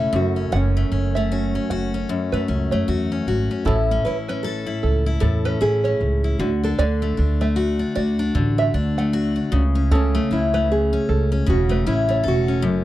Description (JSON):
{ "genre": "acoustic pop", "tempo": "77 BPM", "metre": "4/4", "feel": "swing 60% on 16ths", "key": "A major", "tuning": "A4 = 439 Hz", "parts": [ { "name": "nylon-string guitar", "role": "melody", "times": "0.0-12.8 s", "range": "C#4 to B4", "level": "-24 LUFS", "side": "right 1 dB", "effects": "none" }, { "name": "picked steel-string acoustic guitar", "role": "accompaniment", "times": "0.0-12.8 s", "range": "F#2 to A4", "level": "-23 LUFS", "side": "left 3 dB", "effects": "none" }, { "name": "upright bass", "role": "bass", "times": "0.0-12.8 s", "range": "E1 to F#2", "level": "-22 LUFS", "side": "right 1 dB", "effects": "none" }, { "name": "open-back banjo", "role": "arpeggios", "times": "0.5-12.3 s", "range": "A4 to F#5", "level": "-27 LUFS", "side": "right 6 dB", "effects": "none" }, { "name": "kick drum", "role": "drums", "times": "3.7-11.7 s", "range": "none", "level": "-23 LUFS", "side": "right 1 dB", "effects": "none" } ], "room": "little or no reverb", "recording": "dry, close 1970s-style studio recording", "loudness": "-18 LUFS", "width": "side -14 dB against mid", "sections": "0.0-12.8 A section", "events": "none", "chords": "0.1 F#m; 3.7 A; 6.4 D; 9.5 A/C#" }